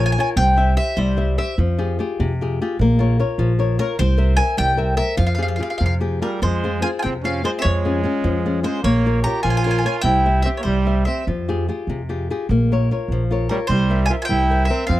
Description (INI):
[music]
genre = italian folk, Italian serenade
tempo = 99 BPM (dotted quarters)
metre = 6/8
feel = straight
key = F harmonic minor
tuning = A4 = 439 Hz
[part]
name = mandolin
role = melody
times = 0.0-1.6, 3.8-11.2, 13.5-15.0 s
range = Bb4 to Bb5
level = -23 LUFS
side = equal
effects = none
[part]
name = flamenco guitar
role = accompaniment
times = 0.0-15.0 s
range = C3 to E5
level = -22 LUFS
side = left 3 dB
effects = none
[part]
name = upright bass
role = bass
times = 0.0-15.0 s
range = Bb1 to F2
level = -20 LUFS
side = right 1 dB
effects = none
[part]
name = brilliant trumpet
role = second line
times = 6.2-11.3, 13.5-15.0 s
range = G3 to G4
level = -25 LUFS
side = right 6 dB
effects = none
[sound]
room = small room ambience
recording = dry, close 1970s-style studio recording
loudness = -17 LUFS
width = side -15 dB against mid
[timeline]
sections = 0.0-6.4 A section; 6.4-15.0 A section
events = none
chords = 0.4 C; 1.6 Fmadd9; 2.8 Bbm; 4.0 C7; 5.2 Fmadd9; 6.4 Fm; 7.6 Db/F; 8.8 Bbm; 10.0 C; 11.3 Fmadd9; 12.5 Bbm; 13.7 C7